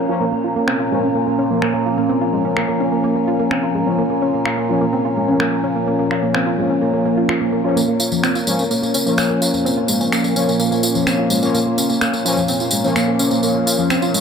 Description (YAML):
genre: melodic techno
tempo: 127 BPM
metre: 4/4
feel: straight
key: Bb minor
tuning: A4 = 439 Hz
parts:
  - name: dark analog pad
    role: sustained chords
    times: 0.0-14.2 s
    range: Bb3 to Ab5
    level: -24 LUFS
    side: right 1 dB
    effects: chorus, vintage 12-bit sampler grit
  - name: soft round pluck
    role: arpeggios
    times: 0.0-14.2 s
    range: F3 to F4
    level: -21 LUFS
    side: right 2 dB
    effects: chorus, tape echo
  - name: analog synth brass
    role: stabs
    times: 0.0-14.2 s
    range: F3 to Db4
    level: -22 LUFS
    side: left 3 dB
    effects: chorus, tape echo
  - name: overtone-sweeping drone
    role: drone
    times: 0.0-14.2 s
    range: Bb2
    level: -30 LUFS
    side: left 1 dB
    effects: chorus, built-in reverb
  - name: warbly tape-like pad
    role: texture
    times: 0.0-14.2 s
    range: Db4 to Bb5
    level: -23 LUFS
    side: equal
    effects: chorus, built-in reverb
  - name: electronic finger snaps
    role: drums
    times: 0.7-14.0 s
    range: none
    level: -26 LUFS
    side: equal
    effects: low-pass filter on snare, low-pass filter on room
  - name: tambourine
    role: percussion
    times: 7.8-14.2 s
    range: none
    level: -23 LUFS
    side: equal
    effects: none
room: light reverb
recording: none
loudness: -15 LUFS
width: side -6 dB against mid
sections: 0.0-14.2 A section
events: filter sweep on analog polysynth 0.0-14.2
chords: 0.0 Bbm